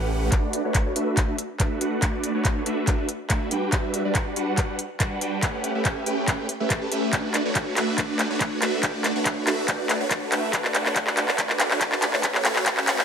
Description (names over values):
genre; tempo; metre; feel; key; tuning
future bass; 141 BPM; 4/4; half-time; B minor; A4 = 441 Hz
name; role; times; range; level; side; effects
supersaw chords; riff; 0.0-13.0 s; G3 to A5; -25 LUFS; right 1 dB; phaser, sidechain pumping, low-pass filter, digital delay
electronic kick drum; drums; 0.3-12.8 s; none; -26 LUFS; equal; none
pop drum kit; drums; 0.3-13.0 s; handclaps, hi-hat; -24 LUFS; equal; none
room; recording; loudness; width
moderate digital room reverb, RT60 1.1 s; high-pass filter; -21 LUFS; side -7 dB against mid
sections
0.3-13.0 A section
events
build-up 0.3-13.0; drum fill 0.3-13.0; filter sweep on supersaw synth 0.3-13.0; filter sweep 0.3-13.0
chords
0.3 Bm7; 3.5 Em9; 5.4 A13; 7.1 Bm7; 12.2 A69